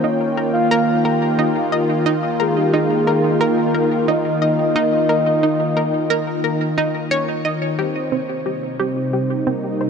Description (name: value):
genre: ambient, sequencer-driven space music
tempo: 89 BPM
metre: 4/4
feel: straight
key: unclear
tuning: A4 = 439 Hz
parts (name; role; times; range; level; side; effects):
- soft octave-layered synth lead; melody; 0.0-9.9 s; G4 to G5; -22 LUFS; left 1 dB; chorus, tremolo, tape echo
- lush unison pad; sustained chords; 0.0-9.9 s; C3 to G5; -19 LUFS; equal; chorus
- analog pluck; riff; 0.0-9.9 s; C4 to Eb5; -22 LUFS; right 1 dB; chorus, tape echo
room: wet huge ambient reverb, RT60 8.9 s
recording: none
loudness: -16 LUFS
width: side -6 dB against mid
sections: 0.0-8.1 A section; 8.1-9.9 B section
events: filter sweep on synth arpeggio sound 8.1-9.9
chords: 0.0 Eb; 8.1 Cm